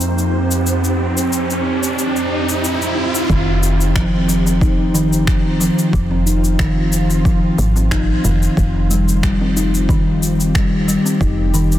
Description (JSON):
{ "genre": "organic downtempo", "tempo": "91 BPM", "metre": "4/4", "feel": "swing 53% on 16ths", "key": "unclear", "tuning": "A4 = 440 Hz", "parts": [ { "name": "ethereal airy pad", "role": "sustained chords", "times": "0.0-11.8 s", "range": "F2 to C5", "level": "-21 LUFS", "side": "right 2 dB", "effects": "ensemble chorus, built-in reverb, sidechain pumping" }, { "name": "electronic shaker and finger snaps", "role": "drums", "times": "0.0-11.8 s", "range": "none", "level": "-25 LUFS", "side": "left 2 dB", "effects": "soft clipping on snare" }, { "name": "riser", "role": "sound effects", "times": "0.0-3.3 s", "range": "none", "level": "-23 LUFS", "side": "equal", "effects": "none" }, { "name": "kalimba", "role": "arpeggios", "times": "3.3-11.7 s", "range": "Eb3 to Eb4", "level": "-17 LUFS", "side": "left 1 dB", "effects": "tape echo" }, { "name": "woody FM bass", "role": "bass", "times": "3.3-11.8 s", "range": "F1 to Ab1", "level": "-18 LUFS", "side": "equal", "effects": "sidechain pumping" }, { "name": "electronic kick drum", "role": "drums", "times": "3.3-11.3 s", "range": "none", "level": "-18 LUFS", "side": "equal", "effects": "none" } ], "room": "light reverb", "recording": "dense, heavily limited modern master", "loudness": "-14 LUFS", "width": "side -12 dB against mid", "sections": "0.0-3.3 A section; 3.3-11.8 B section", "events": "riser 0.0-3.3", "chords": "0.0 Cmadd11/F; 3.3 F7(no3); 8.6 Cmadd11/F" }